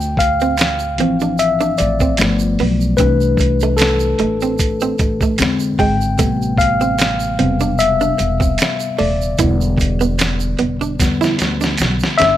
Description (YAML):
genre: R&B, neo-soul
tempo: 75 BPM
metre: 4/4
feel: swing 55% on 16ths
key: unclear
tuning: A4 = 439 Hz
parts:
  - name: tine electric piano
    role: accompaniment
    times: 0.0-12.4 s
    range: C3 to G5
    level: -17 LUFS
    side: left 3 dB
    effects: none
  - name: upright bass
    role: bass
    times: 0.0-12.4 s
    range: Eb1 to E2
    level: -20 LUFS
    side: right 1 dB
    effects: none
  - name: tube shaker and finger snaps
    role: percussion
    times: 0.0-12.2 s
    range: none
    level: -29 LUFS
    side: right 8 dB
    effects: none
  - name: archtop guitar, miked and amplified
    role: second line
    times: 0.2-12.4 s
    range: G#3 to E4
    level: -21 LUFS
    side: right 7 dB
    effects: none
  - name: dusty soul sampler-style drum kit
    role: drums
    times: 0.2-12.4 s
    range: finger snaps, hi-hat, kick drum, snare drum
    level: -18 LUFS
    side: right 1 dB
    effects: none
room: small room reverb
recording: none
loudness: -14 LUFS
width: side -12 dB against mid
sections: 0.0-12.4 A section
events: tine electric piano solo 0.0-12.4; drum fill 11.0-12.4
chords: 0.0 Dm9; 2.2 G7; 3.0 C69; 5.4 E7alt; 6.2 Am9; 9.4 Em7